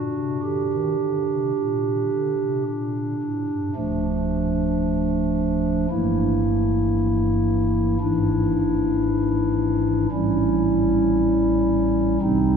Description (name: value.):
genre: classical, chorale-style piece for pipe organ.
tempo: 53-58 BPM.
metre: 4/4.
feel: rubato.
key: G minor, D minor from 3.8 s.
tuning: A4 = 439 Hz.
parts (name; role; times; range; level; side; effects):
pipe organ, stopped flute; solo; 0.0-12.6 s; D1 to G4; -19 LUFS; right 1 dB; none.
room: wet cathedral reverb, RT60 5.4 s.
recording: minimal, uncompressed stereo recording.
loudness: -19 LUFS.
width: side -6 dB against mid.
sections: 0.0-3.8 A section; 3.8-12.6 B section.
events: none.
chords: 0.0 Gm; 3.8 Dm; 5.9 Edim/G; 8.0 E7/G#; 10.1 A7.